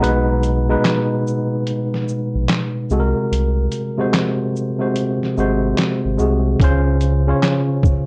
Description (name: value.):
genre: lo-fi hip hop.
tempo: 73 BPM.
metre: 4/4.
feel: swing 64% on 16ths.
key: unclear.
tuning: A4 = 439 Hz.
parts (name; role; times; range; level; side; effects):
tine electric piano; accompaniment; 0.0-8.1 s; Cb3 to Bb5; -20 LUFS; equal; overdrive, low-pass filter.
warm sub bass; bass; 0.0-7.3 s; Ab1 to Db2; -21 LUFS; equal; tube saturation.
trip hop sampler-style drum kit; drums; 0.0-8.1 s; handclaps, hi-hat, kick drum, shaker, snare drum; -21 LUFS; equal; vintage 12-bit sampler grit.
room: moderate small room reverb, RT60 0.6 s.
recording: worn, warbling old tape, cassette tape, warbly pitch drift.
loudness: -18 LUFS.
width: mono.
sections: 0.0-8.1 A section.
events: break 0.0-6.6.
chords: 0.0 Cb6; 2.9 Ab7/C; 6.6 Dbmaj7.